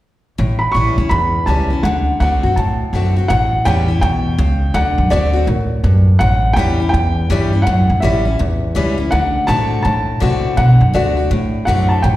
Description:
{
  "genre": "rockabilly",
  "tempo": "165 BPM",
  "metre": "4/4",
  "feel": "swing 62% on 8ths",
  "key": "A mixolydian",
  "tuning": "A4 = 440 Hz",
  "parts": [
    { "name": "picked steel-string acoustic guitar", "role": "accompaniment", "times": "0.4-12.2 s", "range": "E2 to F#4", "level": "-20 LUFS", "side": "left 4 dB", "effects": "plate reverb, slapback echo" },
    { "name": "upright bass", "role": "bass", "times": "0.4-12.2 s", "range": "A1 to C3", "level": "-15 LUFS", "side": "equal", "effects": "none" },
    { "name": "dark upright piano", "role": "melody", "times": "0.6-12.2 s", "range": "D5 to C#6", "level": "-19 LUFS", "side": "right 1 dB", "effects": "plate reverb, slapback echo" }
  ],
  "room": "light reverb",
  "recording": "live gig heard through the venue's PA, recital hall reverb",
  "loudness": "-13 LUFS",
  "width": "side -15 dB against mid",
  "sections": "0.4-3.3 A section; 3.3-12.2 B section",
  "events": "none",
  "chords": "0.4 A7; 1.8 D7; 3.3 A7; 4.8 D7; 6.2 A7; 9.1 D7"
}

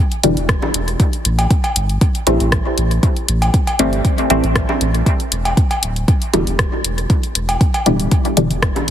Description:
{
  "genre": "dub techno",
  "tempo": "118 BPM",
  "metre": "4/4",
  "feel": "swing 53% on 16ths",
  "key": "A minor",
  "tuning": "A4 = 445 Hz",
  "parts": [
    { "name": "deep house drum kit", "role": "drums", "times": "0.1-8.9 s", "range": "hi-hat, rim click", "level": "-21 LUFS", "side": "left 1 dB", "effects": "dub echo" },
    { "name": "filtered dub chord stab", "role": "stabs", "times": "0.2-8.5 s", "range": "B2 to C4", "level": "-19 LUFS", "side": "left 1 dB", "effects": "chorus, phaser, cassette tape, sidechain pumping, dub echo" },
    { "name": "warm sub bass", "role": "bass", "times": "0.2-8.9 s", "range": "D1 to A1", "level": "-19 LUFS", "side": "equal", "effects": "sidechain pumping" },
    { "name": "electronic kick drum", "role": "drums", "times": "0.5-8.7 s", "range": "none", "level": "-15 LUFS", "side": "equal", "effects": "none" },
    { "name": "bongos and cowbell", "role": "percussion", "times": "0.6-8.9 s", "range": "none", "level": "-24 LUFS", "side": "right 1 dB", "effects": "overdrive, sidechain pumping on perc, dub echo" }
  ],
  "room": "light reverb, digital ambience",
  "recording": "heavily compressed radio sound, multiband compression",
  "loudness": "-14 LUFS",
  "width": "side -10 dB against mid",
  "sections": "0.0-8.9 A section",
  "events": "none",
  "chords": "0.0 Em7; 1.0 Am7; 5.1 Em7"
}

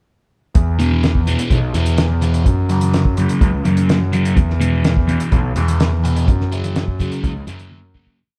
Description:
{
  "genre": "psychedelic rock",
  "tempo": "126 BPM",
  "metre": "4/4",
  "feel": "straight",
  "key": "unclear",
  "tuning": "A4 = 441 Hz",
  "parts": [
    { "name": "fuzz picked electric bass", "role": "bass", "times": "0.6-8.1 s", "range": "B1 to F#2", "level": "-20 LUFS", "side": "equal", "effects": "overdrive" },
    { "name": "cloth-damped thuddy drum kit", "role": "drums", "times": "0.6-8.2 s", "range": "hi-hat, kick drum, snare drum, toms", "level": "-20 LUFS", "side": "equal", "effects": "none" },
    { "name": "fuzz guitar", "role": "riff", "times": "0.8-8.2 s", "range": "E2 to F#3", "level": "-22 LUFS", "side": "equal", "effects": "distortion, phaser" },
    { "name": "congas", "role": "percussion", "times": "0.9-8.1 s", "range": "none", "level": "barely audible", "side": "none", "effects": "none" }
  ],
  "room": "light reverb",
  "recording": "band playing live in one room",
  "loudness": "-17 LUFS",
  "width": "mono",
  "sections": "0.6-8.2 groove",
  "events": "fade-out 6.3-8.2; drum fill 7.7-8.2",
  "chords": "0.6 E5; 2.5 F#5; 4.4 E5; 6.3 F#5"
}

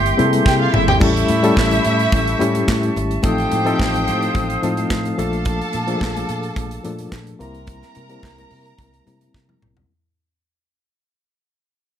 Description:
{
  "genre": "disco",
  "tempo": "108 BPM",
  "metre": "4/4",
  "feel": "straight",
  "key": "unclear",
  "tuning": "A4 = 441 Hz",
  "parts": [
    { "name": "warm studio violin section", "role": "second line", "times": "0.0-9.6 s", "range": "E4 to Bb5", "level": "-23 LUFS", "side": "right 1 dB", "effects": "plate reverb" },
    { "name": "reed electric piano", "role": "accompaniment", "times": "0.0-9.9 s", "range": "F3 to Bb4", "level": "-20 LUFS", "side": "left 3 dB", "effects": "overdrive, tremolo, low-pass filter, plate reverb" },
    { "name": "small flute group", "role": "sustained chords", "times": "0.0-9.9 s", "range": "G4 to Eb6", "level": "-24 LUFS", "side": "right 3 dB", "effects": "low-pass filter" },
    { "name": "fingered electric bass with an envelope filter", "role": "bass", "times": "0.0-9.8 s", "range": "G1 to C3", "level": "-23 LUFS", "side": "right 1 dB", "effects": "none" },
    { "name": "modern studio drum kit", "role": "drums", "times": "0.1-9.9 s", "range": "crash cymbal, handclaps, hi-hat, kick drum, snare drum, toms", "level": "-22 LUFS", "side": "equal", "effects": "none" },
    { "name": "congas", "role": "percussion", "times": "0.2-9.8 s", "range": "none", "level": "-32 LUFS", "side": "left 6 dB", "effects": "none" }
  ],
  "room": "moderate large studio reverb, RT60 0.8 s, small room ambience",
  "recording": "none",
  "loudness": "-15 LUFS",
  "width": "side -9 dB against mid",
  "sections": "0.0-1.0 A section; 1.0-9.9 B section",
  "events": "drum fill 0.5-1.0, 9.3-9.9; fade-out 1.0-9.9; filter sweep 1.0-9.9",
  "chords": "0.0 C7; 1.0 A7; 3.2 F7/A; 5.2 Bbmaj7; 7.4 C7"
}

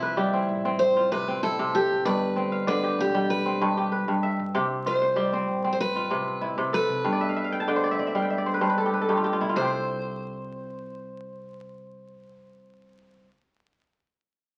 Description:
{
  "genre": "west african traditional, West African string and xylophone music",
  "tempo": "96 BPM",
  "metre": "4/4",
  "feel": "straight",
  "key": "C major",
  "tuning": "A4 = 439 Hz",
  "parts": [
    { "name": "picked steel-string acoustic guitar", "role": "melody", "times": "0.0-13.3 s", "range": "E4 to C5", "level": "-30 LUFS", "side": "equal", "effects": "none" },
    { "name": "kora", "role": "arpeggios", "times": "0.0-13.4 s", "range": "G2 to A5", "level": "-28 LUFS", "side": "equal", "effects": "none" },
    { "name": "upright bass", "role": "bass", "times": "0.0-13.3 s", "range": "E1 to C3", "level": "-43 LUFS", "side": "equal", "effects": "none" }
  ],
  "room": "wet large studio reverb, RT60 1.1 s",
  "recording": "very old 78 rpm record, vinyl crackle",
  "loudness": "-25 LUFS",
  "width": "mono",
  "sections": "0.0-9.6 A section; 9.6-12.1 B section",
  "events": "kora fill 7.1-9.6",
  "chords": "0.0 C; 2.1 G; 4.5 C; 7.1 G; 9.6 N.C."
}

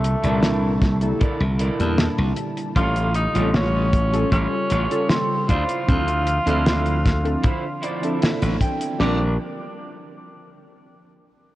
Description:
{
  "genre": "vaporwave",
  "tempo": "77 BPM",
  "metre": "4/4",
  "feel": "straight",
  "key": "Bb lydian",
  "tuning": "A4 = 441 Hz",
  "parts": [
    { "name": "warm tenor saxophone", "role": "melody", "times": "0.0-9.4 s", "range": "A3 to E#4", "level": "-26 LUFS", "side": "equal", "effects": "tape echo" },
    { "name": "warbly tape-like pad", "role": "sustained chords", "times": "0.1-9.4 s", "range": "Bb2 to E5", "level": "-32 LUFS", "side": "equal", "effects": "none" },
    { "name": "glassy slap bass", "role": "bass", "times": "0.0-9.4 s", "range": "A1 to E2", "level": "-21 LUFS", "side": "equal", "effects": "none" },
    { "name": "damped 70s drum kit", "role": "drums", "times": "0.0-9.0 s", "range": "hi-hat, snare drum", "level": "-25 LUFS", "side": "equal", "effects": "none" },
    { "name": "warbly lo-fi synth keys", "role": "accompaniment", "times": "0.2-9.3 s", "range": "Bb2 to A5", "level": "-27 LUFS", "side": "equal", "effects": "analog chorus, analog delay" },
    { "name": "electric guitar at the edge of break-up", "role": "riff", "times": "0.2-9.4 s", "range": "E4 to G5", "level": "-30 LUFS", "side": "right 2 dB", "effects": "wide subtle chorus, vintage 12-bit sampler grit, analog delay" },
    { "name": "damped 70s drum kit", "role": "drums", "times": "0.8-9.2 s", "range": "crash cymbal, kick drum, snare drum", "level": "-20 LUFS", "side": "equal", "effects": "none" }
  ],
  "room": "light reverb",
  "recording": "worn, warbling old tape, cassette tape, warbly pitch drift",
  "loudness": "-18 LUFS",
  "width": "side -15 dB against mid",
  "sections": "0.0-9.0 A section; 9.0-11.6 B section",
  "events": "clean electric guitar fill 7.8-9.0; band accent 8.2-8.6",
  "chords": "0.0 C13; 2.8 A7b13; 5.5 Dm9; 9.0 Bb6"
}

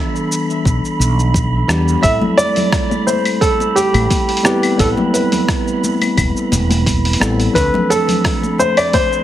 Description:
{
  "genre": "sunset chillout",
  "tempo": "87 BPM",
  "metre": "4/4",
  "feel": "straight",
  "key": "A minor",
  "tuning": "A4 = 436 Hz",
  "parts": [
    { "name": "dark baby grand piano", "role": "melody", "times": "0.0-9.2 s", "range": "G4 to E5", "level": "-16 LUFS", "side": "equal", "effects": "ping-pong delay" },
    { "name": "bell-like tine electric piano", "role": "accompaniment", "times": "0.0-9.2 s", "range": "E3 to B4", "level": "-19 LUFS", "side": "moving between left 3 dB and right 4 dB", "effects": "auto-pan, ping-pong delay" },
    { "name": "wind-like tuned noise texture", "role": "texture", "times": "0.0-9.2 s", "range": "B5", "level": "-27 LUFS", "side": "right 5 dB", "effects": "built-in reverb" },
    { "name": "dusty soul sampler-style drum kit", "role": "drums", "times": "0.2-9.2 s", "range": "claves, hi-hat, rim click, shaker", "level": "-21 LUFS", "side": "equal", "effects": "none" },
    { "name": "mellow fretless electric bass", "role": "bass", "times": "0.7-7.7 s", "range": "E1 to E2", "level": "-16 LUFS", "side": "equal", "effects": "none" },
    { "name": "electronic kick drum", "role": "drums", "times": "0.7-9.1 s", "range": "none", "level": "-19 LUFS", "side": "equal", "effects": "none" },
    { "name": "congas", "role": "percussion", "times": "2.2-9.1 s", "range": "none", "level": "-22 LUFS", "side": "left 2 dB", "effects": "none" }
  ],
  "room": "light reverb",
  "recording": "heavily compressed radio sound, multiband compression, faint mains hum",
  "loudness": "-13 LUFS",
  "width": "side -12 dB against mid",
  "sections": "0.0-9.2 A section",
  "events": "none",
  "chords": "0.0 Em7; 2.0 Am9; 7.6 Dm7"
}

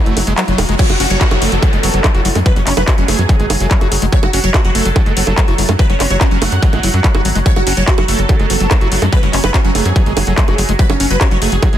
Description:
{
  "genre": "psychedelic trance",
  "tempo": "144 BPM",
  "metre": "4/4",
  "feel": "straight",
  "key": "F# minor",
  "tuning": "A4 = 443 Hz",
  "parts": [
    { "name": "bubbling stepped-filter texture", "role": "sustained chords", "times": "0.0-11.8 s", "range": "F#3", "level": "-24 LUFS", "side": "right 2 dB", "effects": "chorus, built-in reverb, vintage 12-bit sampler grit, sidechain pumping" },
    { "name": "riser and downlifter", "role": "sound effects", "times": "0.0-4.1 s", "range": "none", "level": "-23 LUFS", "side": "equal", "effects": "none" },
    { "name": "formant-sweep wobble bass", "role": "second line", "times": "0.1-10.6 s", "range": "A3 to F#4", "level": "-29 LUFS", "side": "left 3 dB", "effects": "none" },
    { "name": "screaming distorted acid line", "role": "riff", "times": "0.1-11.8 s", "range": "F#3 to F#4", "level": "-21 LUFS", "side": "moving between left 5 dB and right 5 dB", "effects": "distortion, chorus, auto-pan, sidechain pumping, tape echo" },
    { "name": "tight sequencer bass", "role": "bass", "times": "0.1-11.8 s", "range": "E1 to F#2", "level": "-16 LUFS", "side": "equal", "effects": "none" },
    { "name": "techno drum kit", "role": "drums", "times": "0.1-11.8 s", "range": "bongos, crash cymbal, handclaps, hi-hat", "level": "-19 LUFS", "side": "right 1 dB", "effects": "none" },
    { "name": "supersaw stab", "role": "melody", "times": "0.8-11.8 s", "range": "C#4 to F#5", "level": "-21 LUFS", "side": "right 2 dB", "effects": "phaser, sidechain pumping, tape echo" },
    { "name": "electronic kick drum", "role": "drums", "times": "0.8-11.7 s", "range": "none", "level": "-13 LUFS", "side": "equal", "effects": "distortion" }
  ],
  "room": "digital ambience",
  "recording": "dense, heavily limited modern master",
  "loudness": "-11 LUFS",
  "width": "side -11 dB against mid",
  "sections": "0.8-11.8 A section",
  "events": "riser 0.0-0.8; kick drops out 0.4-0.8; drop 0.8-11.8",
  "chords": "0.0 F#5"
}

